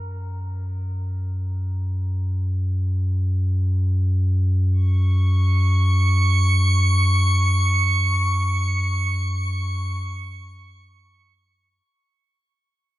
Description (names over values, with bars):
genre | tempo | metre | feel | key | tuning
ambient | free time | none | none | unclear | A4 = 440 Hz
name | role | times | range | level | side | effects
warm sub bass | bass | 0.0-11.8 s | Gb2 | -19 LUFS | equal | none
drifting glass-harmonics texture | texture | 5.1-11.9 s | Db6 | -24 LUFS | right 2 dB | chorus, built-in reverb
room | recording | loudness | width
digital ambience | none | -18 LUFS | side -16 dB against mid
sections
0.0-11.9 A section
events
fade-in on sub bass 0.0-11.9; fade-out 7.1-11.9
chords
0.0 Gb5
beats
free time